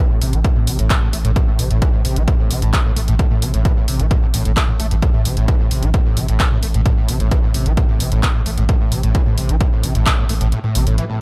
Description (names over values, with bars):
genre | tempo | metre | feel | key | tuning
driving peak-time techno | 131 BPM | 4/4 | straight | A minor | A4 = 440 Hz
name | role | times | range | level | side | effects
screaming distorted acid line | riff | 0.0-11.2 s | G2 to A3 | -25 LUFS | equal | distortion, ensemble chorus, sidechain pumping, analog delay
saturated sub bass | bass | 0.2-11.0 s | A1 | -22 LUFS | equal | overdrive, sidechain pumping, low-pass filter
techno drum kit | drums | 0.2-11.1 s | handclaps, hi-hat, toms | -26 LUFS | equal | overdrive, sidechain pumping on toms, sidechain pumping on hats, sidechain pumping on cymbals
electronic kick drum | drums | 0.4-10.2 s | none | -19 LUFS | equal | none
room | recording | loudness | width
little or no reverb | echo-heavy mix | -17 LUFS | mono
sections
0.0-11.2 A section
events
kick drops out 10.5-11.2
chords
0.0 A5